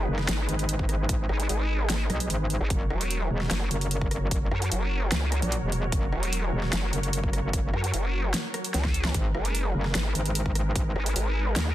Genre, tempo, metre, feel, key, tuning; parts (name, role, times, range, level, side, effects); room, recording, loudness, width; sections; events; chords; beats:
heavy wobble dubstep; 149 BPM; 4/4; half-time; A4 = 440 Hz
supersaw chords; sustained chords; 0.0-11.7 s; F#3 to C#5; -34 LUFS; equal; sidechain pumping, low-pass filter
vowel-sweep wobble bass; bass; 0.0-11.7 s; E1 to F#2; -26 LUFS; equal; chorus, overdrive
metallic wobble bass; bass; 0.1-10.9 s; E1 to B1; -28 LUFS; equal; chorus, overdrive
big-room dance drum kit; drums; 0.2-11.6 s; hi-hat, rim click, snare drum; -31 LUFS; equal; overdrive, studio ambience
electronic kick drum; drums; 0.8-10.8 s; -28 LUFS; equal; overdrive, studio ambience
little or no reverb; dense, heavily limited modern master; -24 LUFS; side -14 dB against mid
0.0-11.7 A section
drum fill 8.7-9.1
0.0 G#m; 2.7 F#; 9.1 G#madd9
0.29 0.69 | 1.09 1.49 1.90 2.30 | 2.70 3.10 3.51 3.91 | 4.31 4.71 5.12 5.52 | 5.92 6.33 6.73 7.13 | 7.53 7.94 8.34 8.74 | 9.14 9.55 9.95 10.35 | 10.76 11.16 11.56